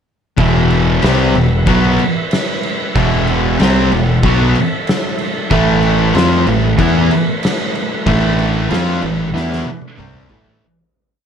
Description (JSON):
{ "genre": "stoner and doom metal", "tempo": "94 BPM", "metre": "4/4", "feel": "straight", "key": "E phrygian", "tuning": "A4 = 439 Hz", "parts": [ { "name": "tonewheel organ", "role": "sustained chords", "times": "0.4-10.6 s", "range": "A3 to E5", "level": "-27 LUFS", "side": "equal", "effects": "none" }, { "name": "raw garage guitar", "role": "riff", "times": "0.4-10.6 s", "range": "E2 to F4", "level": "-19 LUFS", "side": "equal", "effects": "overdrive" }, { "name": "thick fuzz guitar", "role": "riff", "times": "0.4-10.6 s", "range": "E2 to F4", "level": "-18 LUFS", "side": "left 9 dB", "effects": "distortion" }, { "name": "thick fuzz guitar", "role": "riff", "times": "0.4-10.6 s", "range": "E2 to F4", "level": "-17 LUFS", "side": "right 7 dB", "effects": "distortion" }, { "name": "growling fingered electric bass", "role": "bass", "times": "0.4-10.6 s", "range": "E1 to F2", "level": "-18 LUFS", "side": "left 1 dB", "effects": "overdrive" }, { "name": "oversized low-tuned drum kit", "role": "drums", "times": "0.4-10.6 s", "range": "crash cymbal, kick drum, snare drum, toms", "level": "-18 LUFS", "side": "equal", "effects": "none" } ], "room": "light reverb, studio reverb", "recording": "dark, warm production", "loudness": "-12 LUFS", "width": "side -8 dB against mid", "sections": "0.4-10.6 riff", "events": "fade-out 8.1-10.6; drum fill 9.3-10.6", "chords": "0.4 Em; 5.5 A5", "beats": "| 0.38 1.03 1.67 2.31 | 2.96 3.60 4.24 4.88 | 5.52 6.16 6.79 7.43 | 8.07 8.71 9.34 9.98" }